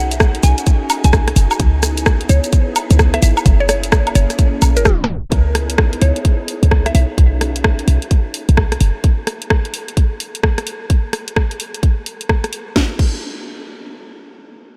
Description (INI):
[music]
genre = UK garage, two-step garage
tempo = 129 BPM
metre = 4/4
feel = swing 63% on 16ths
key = C# dorian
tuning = A4 = 445 Hz
[part]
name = mallet-like synth pluck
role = melody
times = 0.0-7.0 s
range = A#4 to G#5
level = -27 LUFS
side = equal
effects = chorus, tape echo
[part]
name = soft string machine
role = sustained chords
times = 0.0-9.0 s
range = A#3 to G#4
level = -29 LUFS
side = equal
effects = ensemble chorus, sidechain pumping
[part]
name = short 808-style bass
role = bass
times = 0.0-8.9 s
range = F#1 to C#2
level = -16 LUFS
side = equal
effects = sidechain pumping
[part]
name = garage drum kit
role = drums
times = 0.1-13.2 s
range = crash cymbal, hi-hat, rim click, shaker, snare drum, woodblock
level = -22 LUFS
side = equal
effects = none
[part]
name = electronic kick drum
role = drums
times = 0.2-13.2 s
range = none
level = -16 LUFS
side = equal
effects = none
[sound]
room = light reverb, digital ambience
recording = tape stop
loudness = -15 LUFS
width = mono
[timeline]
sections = 0.0-5.3 A section; 5.3-12.8 B section; 12.8-14.8 C section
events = drop 0.0-5.3; tape stop 4.9-5.3; filter sweep on string machine 5.3-9.0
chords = 0.0 B69; 1.6 C#m7; 3.5 F#9; 5.3 C#m7; 6.9 B69; 9.0 N.C.